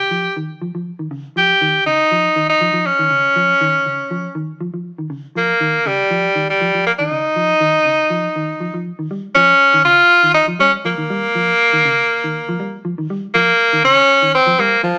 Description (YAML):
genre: afrobeat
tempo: 120 BPM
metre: 4/4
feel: straight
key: Eb mixolydian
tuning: A4 = 440 Hz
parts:
  - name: edgy tenor saxophone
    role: melody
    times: 0.0-15.0 s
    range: F3 to G4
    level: -15 LUFS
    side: equal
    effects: none
  - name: mellow electric guitar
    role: arpeggios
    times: 0.0-14.9 s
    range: Db3 to G3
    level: -27 LUFS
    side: equal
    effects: none
room: moderate stone room reverb, RT60 1.1 s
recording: band playing live in one room, small speaker sound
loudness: -15 LUFS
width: mono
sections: 0.0-9.1 A section; 9.1-15.0 B section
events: none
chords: 0.0 Dbadd9; 9.1 Eb7